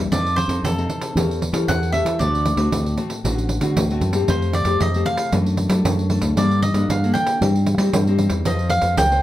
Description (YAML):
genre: samba and choro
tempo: 115 BPM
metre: 4/4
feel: straight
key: unclear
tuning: A4 = 443 Hz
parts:
  - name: nylon-string guitar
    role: accompaniment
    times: 0.0-9.2 s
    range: A2 to C5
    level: -24 LUFS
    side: left 3 dB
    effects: none
  - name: fingered electric bass with an envelope filter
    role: bass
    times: 0.0-9.2 s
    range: A1 to G3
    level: -21 LUFS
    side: equal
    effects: none
  - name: cavaquinho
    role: melody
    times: 0.1-9.2 s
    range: A4 to G5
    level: -23 LUFS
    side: right 1 dB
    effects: none
  - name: pandeiro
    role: percussion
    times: 0.1-9.2 s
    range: none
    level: -24 LUFS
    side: right 2 dB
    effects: none
room: wet small room reverb, RT60 0.5 s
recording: heard from further back in the room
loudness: -17 LUFS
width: side -14 dB against mid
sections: 0.0-9.2 A section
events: cavaquinho solo 0.0-9.2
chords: 0.1 F7; 1.2 A7/E; 2.2 D7; 4.3 Fadd9; 5.3 D/F#; 6.4 Gmadd9; 7.4 Cm/G; 8.5 F